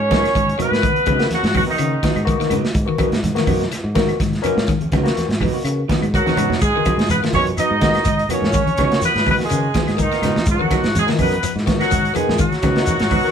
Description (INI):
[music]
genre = afrobeat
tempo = 124 BPM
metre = 4/4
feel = swing 55% on 16ths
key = G# dorian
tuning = A4 = 441 Hz
[part]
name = mellow horn section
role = melody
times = 0.0-2.4, 6.1-13.3 s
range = D#4 to D#5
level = -20 LUFS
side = equal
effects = none
[part]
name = brilliant trombone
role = second line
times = 0.0-2.3, 6.1-13.3 s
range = D#3 to D#4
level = -27 LUFS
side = right 6 dB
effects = none
[part]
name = fingered electric bass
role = bass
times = 0.0-13.2 s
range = F#2 to C#3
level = -24 LUFS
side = equal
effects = none
[part]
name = barky tine electric piano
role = accompaniment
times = 0.1-13.3 s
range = A#3 to G#4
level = -26 LUFS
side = left 7 dB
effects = phaser
[part]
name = electric guitar at the edge of break-up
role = arpeggios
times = 0.1-12.8 s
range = C#3 to G#3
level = -26 LUFS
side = left 8 dB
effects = none
[part]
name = electric guitar through a small old amp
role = stabs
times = 0.1-13.3 s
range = F#3 to D#4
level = -27 LUFS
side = right 7 dB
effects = none
[part]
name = crunchy breakbeat drum kit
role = drums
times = 0.1-13.2 s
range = hi-hat, kick drum, snare drum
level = -21 LUFS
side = right 1 dB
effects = none
[part]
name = congas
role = percussion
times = 0.1-13.2 s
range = none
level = -26 LUFS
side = right 2 dB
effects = none
[part]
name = claves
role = percussion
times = 0.2-13.2 s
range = none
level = -36 LUFS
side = left 5 dB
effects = none
[part]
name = shekere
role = percussion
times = 6.6-13.3 s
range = none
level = -28 LUFS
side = left 1 dB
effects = none
[sound]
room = moderate stone room reverb, RT60 1.3 s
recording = band playing live in one room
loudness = -15 LUFS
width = side -8 dB against mid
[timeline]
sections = 0.0-13.3 A section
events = drum fill 6.3-6.6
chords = 0.0 G#m7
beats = 0.34 | 0.82 1.31 1.79 2.27 | 2.75 3.23 3.72 4.20 | 4.68 5.17 5.65 6.13 | 6.61 7.09 7.58 8.06 | 8.54 9.03 9.51 9.99 | 10.47 10.95 11.44 11.92 | 12.40 12.88